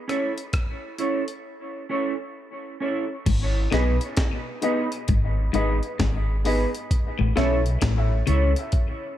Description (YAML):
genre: dub reggae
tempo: 66 BPM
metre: 4/4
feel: swing 64% on 16ths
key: G# phrygian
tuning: A4 = 439 Hz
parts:
  - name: mellow electric guitar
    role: accompaniment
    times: 0.1-8.5 s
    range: B3 to C#5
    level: -28 LUFS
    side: right 2 dB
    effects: analog chorus, dub echo
  - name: breakbeat sampler-style drum kit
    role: drums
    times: 0.1-9.0 s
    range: crash cymbal, hi-hat, kick drum, rim click, snare drum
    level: -25 LUFS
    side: equal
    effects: none
  - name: clean electric guitar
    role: riff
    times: 3.3-8.4 s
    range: G#2 to C#3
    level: -29 LUFS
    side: left 5 dB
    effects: spring reverb, dub echo
  - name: deep dub fingered electric bass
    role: bass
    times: 3.3-8.5 s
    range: G#1 to C#2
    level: -23 LUFS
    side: equal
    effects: none
  - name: dark upright piano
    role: stabs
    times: 3.7-7.5 s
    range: D#4 to E5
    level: -30 LUFS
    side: left 3 dB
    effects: dub echo
room: little or no reverb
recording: echo-heavy mix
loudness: -21 LUFS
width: side -12 dB against mid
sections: 0.0-3.3 A section; 3.3-9.2 B section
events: break 1.4-3.3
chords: 0.0 A; 3.3 G#m; 6.9 A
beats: 0.53 1.44 2.35 | 3.26 4.17 5.08 5.99 | 6.90 7.81 8.72